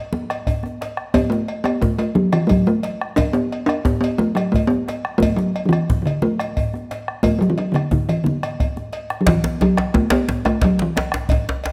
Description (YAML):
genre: west african traditional, West African drum ensemble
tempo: 118 BPM (dotted quarters)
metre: 12/8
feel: straight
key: D major pentatonic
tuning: A4 = 440 Hz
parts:
  - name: bombo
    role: percussion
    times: 0.1-11.4 s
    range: none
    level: -26 LUFS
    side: equal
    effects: none
  - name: congas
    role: percussion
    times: 0.1-11.5 s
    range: none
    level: -31 LUFS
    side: equal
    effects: none
  - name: djembe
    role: percussion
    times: 0.1-11.5 s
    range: none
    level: -31 LUFS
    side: equal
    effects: none
  - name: cowbell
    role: percussion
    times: 0.3-11.7 s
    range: none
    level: -31 LUFS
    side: equal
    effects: none
  - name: talking drum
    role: melody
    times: 1.1-11.2 s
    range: D3 to D4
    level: -20 LUFS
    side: equal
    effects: none
  - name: djembe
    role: percussion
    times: 9.3-11.7 s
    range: none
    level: -26 LUFS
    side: equal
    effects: none
room: moderate recital hall reverb, RT60 1.5 s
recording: none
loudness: -20 LUFS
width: mono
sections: 0.0-9.3 A section; 9.3-11.7 B section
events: drum fill 8.4-9.3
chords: none